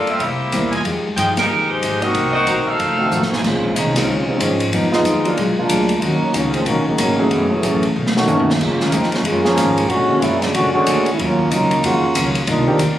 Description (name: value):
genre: jazz, big band swing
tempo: 186 BPM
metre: 4/4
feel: swing 61% on 8ths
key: F minor, Bb minor from 3.4 s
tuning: A4 = 440 Hz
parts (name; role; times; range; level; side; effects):
- clear saxophone section; melody; 0.0-3.3 s; Ab3 to F5; -18 LUFS; equal; none
- picked steel-string acoustic guitar; accompaniment; 0.0-13.0 s; Gb2 to A4; -24 LUFS; left 3 dB; none
- warm baby grand piano; accompaniment; 0.0-12.8 s; D3 to Bb4; -21 LUFS; right 1 dB; none
- upright bass; bass; 0.0-13.0 s; F1 to Bb2; -24 LUFS; equal; none
- open jazz drum kit; drums; 0.1-12.9 s; crash cymbal, hi-hat, kick drum, ride cymbal, snare drum, toms; -23 LUFS; equal; none
- clear trumpet section; stabs; 0.7-3.4 s; Bb3 to Bb5; -23 LUFS; equal; none
- warm trombone section; second line; 3.0-12.8 s; C3 to Ab4; -18 LUFS; right 1 dB; none
room: light reverb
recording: recorded on a phone in the room, club reverb, compression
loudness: -15 LUFS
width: side -12 dB against mid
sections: 0.0-3.4 A section; 3.4-13.0 B section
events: band accent 1.3; drum fill 3.1-3.4, 8.0-8.6; trombone section solo 3.4-13.0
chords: 0.2 C7; 0.9 Fm9; 2.1 Cm7b5; 2.8 F7b9; 3.4 Bbm11; 4.7 Fm7b5; 5.4 Bb7b13; 6.0 Ebm7; 7.3 Gbm7; 8.0 B9; 8.6 Db6; 9.9 Bb7alt; 11.2 Ebm9; 12.5 Cm9